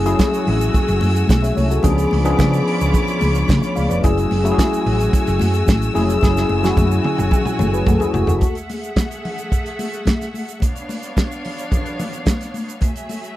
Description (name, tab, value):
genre	disco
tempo	109 BPM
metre	4/4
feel	straight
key	F# minor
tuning	A4 = 440 Hz
part	mellow tine electric piano	accompaniment	0.0-8.5 s	E#3 to E#5	-19 LUFS	left 2 dB	analog chorus
part	clear studio string section	sustained chords	0.0-13.4 s	F#3 to E6	-26 LUFS	equal	none
part	hollow-body short-scale fingered electric bass	bass	0.0-8.4 s	E#1 to C#3	-19 LUFS	right 1 dB	none
part	warm soul drum kit	drums	0.1-13.4 s	hi-hat, kick drum, snare drum, toms	-19 LUFS	right 1 dB	none
part	tube shaker	percussion	0.1-13.4 s	none	-39 LUFS	right 16 dB	none
part	congas	percussion	0.2-13.2 s	none	-27 LUFS	left 2 dB	none
room	little or no reverb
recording	none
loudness	-15 LUFS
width	side -14 dB against mid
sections	0.0-8.4 A section; 8.4-13.4 B section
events	drum fill 6.2-8.4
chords	0.0 F#m9; 1.8 C#7b9; 4.0 F#m9; 10.6 C#7b9; 12.8 F#m9